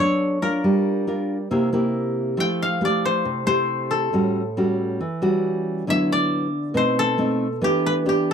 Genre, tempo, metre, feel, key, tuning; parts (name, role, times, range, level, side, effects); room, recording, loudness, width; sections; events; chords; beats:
bossa nova; 137 BPM; 4/4; straight; A4 = 440 Hz
koto; melody; 0.0-8.3 s; G4 to G5; -24 LUFS; left 2 dB
nylon-string guitar; accompaniment; 0.0-8.3 s; A2 to C#5; -21 LUFS; equal
light reverb; dry, close 1970s-style studio recording; -19 LUFS; side -7 dB against mid
0.0-8.3 A section
0.0 Bm9 (rootless); 0.6 Gm7; 1.5 C7; 2.4 Fmaj9; 4.1 A6; 5.9 D69; 6.7 B7b9; 7.6 Em7
0.19 | 0.63 1.07 1.50 1.94 | 2.38 2.81 3.25 3.69 | 4.13 4.56 5.00 5.44 | 5.87 6.31 6.75 7.18 | 7.62 8.06